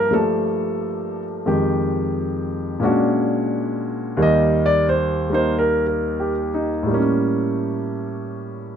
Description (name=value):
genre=solo jazz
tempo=89 BPM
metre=4/4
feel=swing 68% on 8ths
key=unclear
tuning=A4 = 440 Hz
part: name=warm concert grand piano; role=solo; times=0.0-8.8 s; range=Eb2 to Eb5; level=-18 LUFS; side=equal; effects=none
room=moderate club reverb, RT60 0.8 s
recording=dark, warm production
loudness=-18 LUFS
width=side -8 dB against mid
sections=0.0-8.8 A section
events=grand piano solo 0.0-8.8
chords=0.0 Gm9; 1.5 Fm9; 2.8 Bb7alt; 4.2 Eb; 6.9 A7b9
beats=0.12 0.80 | 1.47 2.15 2.83 3.50 | 4.18 4.86 5.53 6.21 | 6.89 7.56 8.24